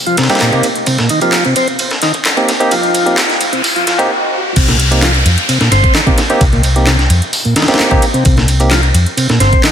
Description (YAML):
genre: breakbeat, breaks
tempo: 130 BPM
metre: 4/4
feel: straight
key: C minor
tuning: A4 = 440 Hz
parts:
  - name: riser, noise sweep and downlifter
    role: sound effects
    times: 0.1-8.3 s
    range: none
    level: -20 LUFS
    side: equal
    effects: none
  - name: tonewheel organ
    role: riff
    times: 0.1-9.7 s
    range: Bb2 to C4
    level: -16 LUFS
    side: equal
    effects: slow rotary speaker, tube saturation, low-pass filter, dub echo
  - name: house drum kit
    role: drums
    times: 0.1-9.7 s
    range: handclaps, hi-hat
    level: -19 LUFS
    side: equal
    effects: overdrive, studio ambience
  - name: breakbeat sampler-style drum kit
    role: drums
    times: 0.2-9.7 s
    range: crash cymbal, hi-hat, kick drum, ride cymbal, snare drum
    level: -15 LUFS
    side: equal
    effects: high-pass filter on snare, studio ambience, high-pass filter on cymbals, high-pass filter on hats, high-pass filter on kick
  - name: barky tine electric piano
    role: stabs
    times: 0.3-8.7 s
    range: Bb3 to G4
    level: -17 LUFS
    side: right 1 dB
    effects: low-pass filter, dub echo
  - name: hollow-body short-scale picked electric bass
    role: bass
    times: 0.9-9.5 s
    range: G1 to F2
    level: -12 LUFS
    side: equal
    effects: high-pass filter
room: light reverb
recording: dense, heavily limited modern master, high-pass filter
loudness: -9 LUFS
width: side -9 dB against mid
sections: 0.0-4.6 A section; 4.6-9.7 B section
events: build-up 0.0-4.6; riser 0.1-4.6; noise sweep 2.7-4.6; stop 4.1-4.6; drop 4.6-9.7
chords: 0.0 Cm7